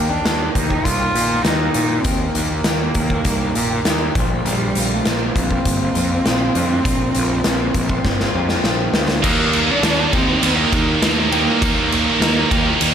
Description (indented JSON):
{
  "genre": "quiet-loud alternative rock",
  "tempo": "100 BPM",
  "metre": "4/4",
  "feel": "straight",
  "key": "unclear",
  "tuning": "A4 = 440 Hz",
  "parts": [
    { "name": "warm cello", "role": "melody", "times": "0.0-12.9 s", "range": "G3 to F4", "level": "-22 LUFS", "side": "right 2 dB", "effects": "none" },
    { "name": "electric guitar through a small old amp", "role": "arpeggios", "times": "0.0-12.9 s", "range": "Bb2 to G4", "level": "-24 LUFS", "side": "left 1 dB", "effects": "lush chorus" },
    { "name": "fuzz picked electric bass", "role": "bass", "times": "0.0-12.9 s", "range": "G1 to Bb2", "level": "-22 LUFS", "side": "equal", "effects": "overdrive" },
    { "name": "oversized low-tuned drum kit", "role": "drums", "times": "0.3-12.9 s", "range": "crash cymbal, hi-hat, kick drum, ride cymbal, snare drum", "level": "-20 LUFS", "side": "equal", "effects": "none" },
    { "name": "scooped high-gain guitar", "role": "riff", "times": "9.2-12.9 s", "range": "Eb3 to Eb4", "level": "-18 LUFS", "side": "right 2 dB", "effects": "distortion" }
  ],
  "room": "light reverb",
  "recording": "none",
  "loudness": "-15 LUFS",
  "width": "side -8 dB against mid",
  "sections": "0.0-9.2 A section; 9.2-12.9 B section",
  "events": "drum fill 8.0-9.2",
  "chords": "0.0 Eb; 4.2 Bbadd9; 9.2 Eb",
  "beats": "0.24 0.85 1.45 | 2.05 2.65 3.25 3.85 | 4.45 5.05 5.65 6.25 | 6.85 7.45 8.05 8.65 | 9.24 9.84 10.43 11.03 | 11.62 12.21 12.81"
}